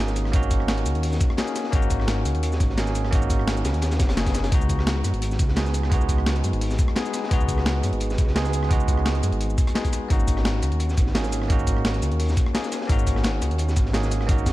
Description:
liquid drum and bass; 172 BPM; 4/4; swing 53% on 16ths; A4 = 440 Hz
bell-like tine electric piano; accompaniment; 0.0-14.5 s; G#3 to G#4; -28 LUFS; moving between left 5 dB and right 5 dB; auto-pan, dub echo
dark detuned saw bass; bass; 0.0-14.5 s; F#1 to F#2; -24 LUFS; equal
breakbeat sampler-style drum kit; drums; 0.1-14.5 s; cabasa, hi-hat, rim click, snare drum; -29 LUFS; equal
crunchy breakbeat drum kit; drums; 0.1-14.5 s; hi-hat, snare drum; -34 LUFS; equal; high-pass filter on hats, high-pass filter on snare, high-pass filter on room
electronic kick drum; drums; 0.3-14.5 s; -22 LUFS; equal
light reverb; dark, warm production; -20 LUFS; side -17 dB against mid
0.0-14.5 A section
0.0 G#9sus4; 4.5 C#9sus4; 10.1 G#9sus4

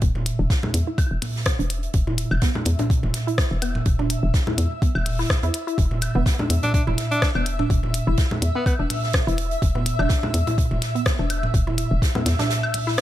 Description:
minimal techno; 125 BPM; 4/4; swing 55% on 16ths; A4 = 440 Hz
resonant blip pluck; riff; 0.0-12.9 s; B3 to E4; -30 LUFS; right 1 dB; chorus, sidechain pumping, tape echo
hollow knocking FM bass; bass; 0.0-12.3 s; E1 to E2; -24 LUFS; equal; sidechain pumping
electronic kick drum; drums; 0.0-12.1 s; -20 LUFS; equal
loose indie drum kit; drums; 0.0-13.0 s; hi-hat, snare drum; -32 LUFS; right 2 dB; high-pass filter on hats, high-pass filter on snare, high-pass filter on room
granular cloud pad; texture; 0.0-13.0 s; E5; -32 LUFS; left 2 dB; built-in reverb, sidechain pumping
congas and claves; percussion; 0.2-12.8 s; -26 LUFS; right 1 dB
minimal click drum kit; drums; 0.3-13.0 s; hi-hat, rim click; -27 LUFS; left 2 dB
bright alto saxophone; melody; 6.6-8.7 s; B3 to D4; -26 LUFS; left 1 dB; digital delay
little or no reverb; -19 LUFS; side -13 dB against mid
0.0-13.0 A section
fade-in on ambient pad 0.0-13.0; filter sweep on synth arpeggio sound 0.0-13.0
0.0 E5

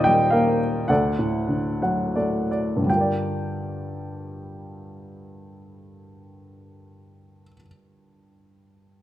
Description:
classical, lyrical solo piano; 80-115 BPM; 3/4; rubato; G minor; A4 = 439 Hz
warm upright piano; solo; 0.0-9.0 s; D2 to G5; -21 LUFS; equal
moderate recital hall reverb, RT60 1.4 s; -20 LUFS; side -13 dB against mid
0.0-2.9 A section; 2.9-7.3 B section
slowing down 0.0-2.9; upright piano fill 1.5-2.9
0.0 Ebadd9; 0.9 D; 2.9 Gm7

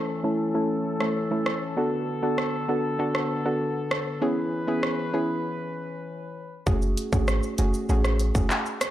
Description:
dancehall; 98 BPM; 4/4; straight; F# minor; A4 = 440 Hz
soft round pluck; accompaniment; 0.0-8.5 s; A3 to A4; -26 LUFS; right 1 dB; chorus, low-pass filter
mellow brass ensemble; sustained chords; 0.0-6.6 s; D3 to B4; -31 LUFS; left 3 dB; sidechain pumping, low-pass filter
island pop drum kit; drums; 1.0-8.9 s; handclaps, hi-hat, kick drum, rim click, shaker; -28 LUFS; equal
clean 808-style bass; bass; 6.7-8.5 s; F#1 to A1; -24 LUFS; equal
light reverb; dark, warm production; -23 LUFS; side -13 dB against mid
0.0-6.7 A section; 6.7-8.9 B section
filter sweep 0.0-6.7; break 5.4-6.7
0.0 A; 1.8 Bm7; 4.2 C#m7; 6.7 F#madd9

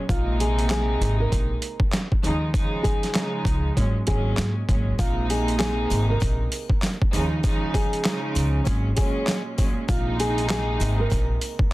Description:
hip hop, boom-bap hip-hop; 98 BPM; 4/4; swing 62% on 16ths; Bb minor; A4 = 440 Hz
warm studio string section; accompaniment; 0.0-11.7 s; Bb2 to Eb4; -28 LUFS; right 2 dB; cassette tape, high-pass filter, low-pass filter
nylon-string guitar; melody; 0.1-11.7 s; F4 to Bb4; -29 LUFS; equal; high-pass filter, low-pass filter, tape echo
upright bass; bass; 0.1-11.3 s; Ab1 to Ab2; -24 LUFS; equal
boom bap sampler-style drum kit; drums; 0.1-11.7 s; handclaps, hi-hat, kick drum, snare drum; -24 LUFS; equal; overdrive
sleigh bells; percussion; 5.0-11.6 s; -42 LUFS; left 8 dB
little or no reverb; dense, heavily limited modern master; -21 LUFS; side -18 dB against mid
0.0-5.0 A section; 5.0-11.7 B section
0.1 Bb9sus4; 2.2 Eb9sus4; 3.8 Ab9sus4; 5.0 Bb9sus4; 7.1 Eb9sus4; 8.7 Ab9sus4; 9.9 Bb9sus4

